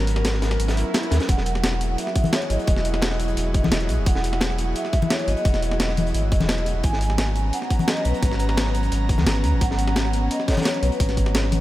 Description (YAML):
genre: liquid drum and bass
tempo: 173 BPM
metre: 4/4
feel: straight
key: G# minor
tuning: A4 = 440 Hz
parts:
  - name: airy breathy pad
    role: sustained chords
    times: 0.0-11.6 s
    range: F#3 to A#5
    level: -29 LUFS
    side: equal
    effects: chorus
  - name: warm sub bass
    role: bass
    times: 0.0-11.6 s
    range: E1 to D#2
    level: -23 LUFS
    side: equal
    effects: none
  - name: breakbeat sampler-style drum kit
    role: drums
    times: 0.1-11.6 s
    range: hi-hat, snare drum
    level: -27 LUFS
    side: equal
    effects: none
  - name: crunchy breakbeat drum kit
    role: drums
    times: 0.1-11.6 s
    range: hi-hat, snare drum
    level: -32 LUFS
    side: equal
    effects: high-pass filter on hats, high-pass filter on snare, high-pass filter on room
  - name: swell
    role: sound effects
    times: 0.7-1.3 s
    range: none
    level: -36 LUFS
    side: right 2 dB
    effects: none
  - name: vibraphone with medium mallets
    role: melody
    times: 1.3-11.6 s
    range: B4 to G#5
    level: -29 LUFS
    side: equal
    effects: tape echo
  - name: electronic kick drum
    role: drums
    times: 1.3-11.2 s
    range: none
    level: -21 LUFS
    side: equal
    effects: none
  - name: congas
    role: percussion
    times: 2.2-11.6 s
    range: none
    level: -27 LUFS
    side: left 4 dB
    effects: none
room: light reverb, small room reverb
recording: none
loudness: -19 LUFS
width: side -15 dB against mid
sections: 0.0-11.6 A section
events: break 0.0-1.3; swell 0.7-1.3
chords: 0.0 G#m11; 1.3 Emaj9; 6.8 G#m11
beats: 0.25 0.60 0.94 | 1.29 1.64 1.98 2.33 | 2.68 3.02 3.37 3.72 | 4.06 4.41 4.76 5.10 | 5.45 5.80 6.14 6.49 | 6.84 7.18 7.53 7.88 | 8.23 8.57 8.92 9.27 | 9.61 9.96 10.31 10.65 | 11.00 11.35